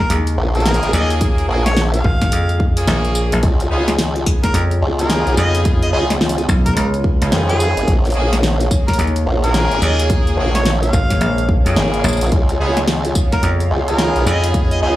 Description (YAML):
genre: glitch hop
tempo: 108 BPM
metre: 4/4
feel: swing 62% on 16ths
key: Bb phrygian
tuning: A4 = 440 Hz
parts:
  - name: warm harmonica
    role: melody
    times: 0.0-14.9 s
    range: Ab4 to F5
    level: -24 LUFS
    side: equal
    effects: tape echo
  - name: warbly tape-like pad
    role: sustained chords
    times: 0.0-15.0 s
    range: Db3 to F4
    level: -27 LUFS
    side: equal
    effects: chorus, built-in reverb, sidechain pumping
  - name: airy breathy pad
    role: texture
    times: 0.0-15.0 s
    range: Ab4 to F5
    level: -26 LUFS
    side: right 2 dB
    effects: chorus, sidechain pumping
  - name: dry thumbed slap bass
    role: bass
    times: 0.1-14.8 s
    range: Ab1 to F2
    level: -17 LUFS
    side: equal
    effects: none
  - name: pop drum kit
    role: drums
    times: 0.1-14.8 s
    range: hi-hat, snare drum, tambourine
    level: -21 LUFS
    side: equal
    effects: none
  - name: formant-sweep wobble bass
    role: bass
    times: 0.4-15.0 s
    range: Ab1 to F2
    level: -17 LUFS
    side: equal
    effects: chorus, tube saturation
  - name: bright horn section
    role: stabs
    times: 0.5-15.0 s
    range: Bb3 to Ab4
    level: -23 LUFS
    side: equal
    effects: sidechain pumping, tape echo
  - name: electronic kick drum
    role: drums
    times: 1.2-14.7 s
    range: none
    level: -17 LUFS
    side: equal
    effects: none
room: little or no reverb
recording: dry, gritty hardware recording, transformer saturation, small room reverb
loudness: -13 LUFS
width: side -15 dB against mid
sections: 0.0-15.0 A section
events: kick drops out 2.9-3.4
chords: 0.0 Bbm7; 3.4 Db7; 7.9 Bbm7; 12.3 Db7